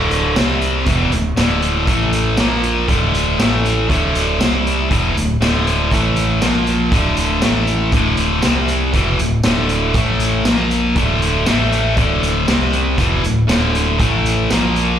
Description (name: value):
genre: classic rock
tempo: 119 BPM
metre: 4/4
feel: straight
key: D minor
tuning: A4 = 442 Hz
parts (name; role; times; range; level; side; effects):
- distorted electric guitar; riff; 0.0-15.0 s; D2 to C4; -16 LUFS; equal; overdrive, slapback echo
- growling fingered electric bass; bass; 0.0-15.0 s; D1 to C2; -20 LUFS; equal; overdrive
- raw garage drum kit; drums; 0.1-14.9 s; hi-hat, kick drum, snare drum, tambourine; -19 LUFS; equal; none
room: little or no reverb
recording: live gig heard through the venue's PA, club reverb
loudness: -14 LUFS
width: side -9 dB against mid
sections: 0.0-15.0 A section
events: none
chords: 0.4 C5; 0.9 D5; 1.9 A5; 2.4 Bb5; 2.9 D5; 3.4 A5; 3.9 D5; 4.4 C5; 4.9 D5; 5.9 A5; 6.4 Bb5; 6.9 D5; 7.4 A5; 7.9 D5; 8.4 C5; 8.9 D5; 10.0 A5; 10.5 Bb5; 11.0 D5; 11.5 A5; 12.0 D5; 12.5 C5; 13.0 D5; 14.0 A5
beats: 0.37 0.88 1.38 | 1.89 2.39 2.90 3.40 | 3.91 4.41 4.92 5.42 | 5.93 6.43 6.93 7.44 | 7.94 8.45 8.95 9.45 | 9.96 10.46 10.97 11.47 | 11.98 12.48 12.99 13.50 | 14.00 14.51